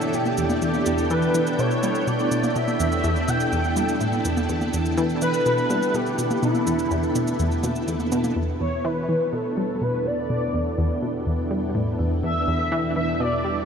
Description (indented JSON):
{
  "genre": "ambient, sequencer-driven space music",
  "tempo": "124 BPM",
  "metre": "4/4",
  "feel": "straight",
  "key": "E minor",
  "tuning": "A4 = 440 Hz",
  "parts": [
    { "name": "expressive portamento lead", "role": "melody", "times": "0.0-13.7 s", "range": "E4 to G5", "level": "-26 LUFS", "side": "equal", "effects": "ensemble chorus, tape echo" },
    { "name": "string machine, full ensemble", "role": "sustained chords", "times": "0.0-13.7 s", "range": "B3 to G5", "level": "-26 LUFS", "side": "equal", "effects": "ensemble chorus" },
    { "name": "analog pluck", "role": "riff", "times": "0.0-13.6 s", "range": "E2 to G3", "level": "-25 LUFS", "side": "equal", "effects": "chorus, tape echo" },
    { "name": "shaker and congas", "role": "percussion", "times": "0.0-8.3 s", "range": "none", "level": "-32 LUFS", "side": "equal", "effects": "tape echo" },
    { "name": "analog drone", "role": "bass", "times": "9.7-13.7 s", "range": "E2", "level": "-36 LUFS", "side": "equal", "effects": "chorus" }
  ],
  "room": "wet huge ambient reverb, RT60 8.3 s",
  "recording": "none",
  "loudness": "-20 LUFS",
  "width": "side -6 dB against mid",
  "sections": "0.0-8.4 A section; 8.4-13.7 B section",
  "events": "filter sweep on synth arpeggio sound 0.0-8.4; fade-in on synth drone 8.4-13.7",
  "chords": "0.0 Em7",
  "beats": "0.14 | 0.62 1.10 1.59 2.07 | 2.56 3.04 3.52 4.01 | 4.49 4.97 5.46 5.94 | 6.43 6.91 7.39 7.88 | 8.36 8.85 9.33 9.81 | 10.30 10.78 11.27 11.75 | 12.23 12.72 13.20"
}